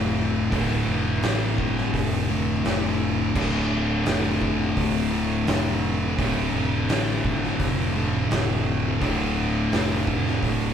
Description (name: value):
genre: stoner and doom metal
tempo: 85 BPM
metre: 4/4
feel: straight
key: D minor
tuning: A4 = 440 Hz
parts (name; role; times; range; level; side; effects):
- overdriven electric guitar; riff; 0.0-10.7 s; D2 to D3; -28 LUFS; left 1 dB; none
- thick fuzz guitar; riff; 0.0-10.7 s; D2 to D3; -26 LUFS; left 4 dB; distortion
- thick fuzz guitar; riff; 0.0-10.7 s; D2 to D3; -29 LUFS; right 6 dB; distortion
- fuzz fingered electric bass; bass; 0.0-10.7 s; D1 to A1; -28 LUFS; right 1 dB; overdrive
- oversized low-tuned drum kit; drums; 0.5-10.6 s; crash cymbal, hi-hat, kick drum, snare drum; -28 LUFS; equal; none
room: light reverb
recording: band playing live in one room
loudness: -21 LUFS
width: side -8 dB against mid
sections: 0.0-10.7 A section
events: none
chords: 0.0 Dm